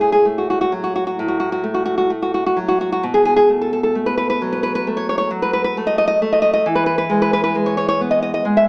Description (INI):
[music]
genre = romantic piece for solo classical guitar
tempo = 66 BPM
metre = 4/4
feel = rubato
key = unclear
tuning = A4 = 440 Hz
[part]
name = nylon-string guitar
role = solo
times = 0.0-8.7 s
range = A2 to E5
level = -18 LUFS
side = equal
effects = none
[sound]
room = light reverb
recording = small speaker sound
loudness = -18 LUFS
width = mono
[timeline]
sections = 0.0-8.7 A section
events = none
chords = 0.0 F#m/A; 3.0 B5; 6.7 E